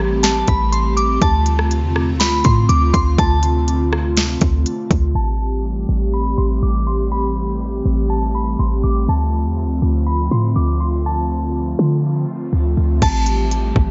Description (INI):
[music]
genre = hip hop, atmospheric cloud-rap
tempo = 122 BPM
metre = 4/4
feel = half-time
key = A minor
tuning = A4 = 439 Hz
[part]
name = airy breathy pad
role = sustained chords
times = 0.0-13.9 s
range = C3 to G4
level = -24 LUFS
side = equal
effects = chorus, sidechain pumping
[part]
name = clean 808-style bass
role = bass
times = 0.0-13.9 s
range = A1 to D3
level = -20 LUFS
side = equal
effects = none
[part]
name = glassy synth bell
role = melody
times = 0.2-13.5 s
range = A5 to D6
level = -26 LUFS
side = equal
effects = chorus, tape echo
[part]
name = trap drum kit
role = drums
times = 0.2-5.0, 13.0-13.9 s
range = crash cymbal, hi-hat, kick drum, rim click, snare drum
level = -22 LUFS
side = equal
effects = none
[sound]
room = moderate plate reverb, RT60 1.1 s, digital ambience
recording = dreamy mix soaked in reverb, low-pass filter, nothing above 7.6 kHz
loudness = -18 LUFS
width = mono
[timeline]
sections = 0.0-5.2 A section; 5.2-13.0 B section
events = filter sweep 5.2-13.0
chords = 0.0 Am7; 1.2 Dm7; 5.2 Am7; 9.1 Dm7; 13.0 Am7